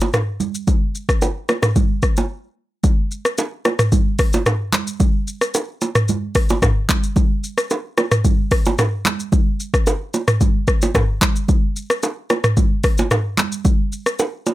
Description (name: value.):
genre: afrobeats.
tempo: 111 BPM.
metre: 4/4.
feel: straight.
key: none.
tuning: none.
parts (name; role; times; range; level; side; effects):
afro-pop drum kit; drums; 0.0-14.5 s; handclaps, hi-hat, kick drum, rim click, shaker, toms; -17 LUFS; left 1 dB; none.
bongos and congas; percussion; 0.0-14.5 s; none; -22 LUFS; right 4 dB; none.
room: little or no reverb.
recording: none.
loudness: -16 LUFS.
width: side -16 dB against mid.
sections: 0.0-2.8 A section; 2.8-14.5 B section.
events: break 2.3-2.8.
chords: none.